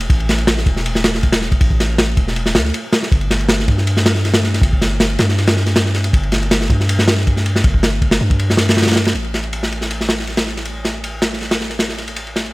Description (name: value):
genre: drum and bass, jungle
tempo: 159 BPM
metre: 4/4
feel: straight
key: unclear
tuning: A4 = 439 Hz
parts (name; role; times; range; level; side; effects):
- long sustained 808-style bass; bass; 0.0-12.5 s; E1 to G2; -19 LUFS; equal; none
- crunchy breakbeat drum kit; drums; 0.0-12.5 s; kick drum, ride cymbal, snare drum; -15 LUFS; equal; high-pass filter on kick, high-pass filter on cymbals, high-pass filter on snare, high-pass filter on room
room: little or no reverb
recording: none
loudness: -14 LUFS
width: side -21 dB against mid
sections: 0.0-9.2 A section; 9.2-12.5 B section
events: drop 0.0-9.2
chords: none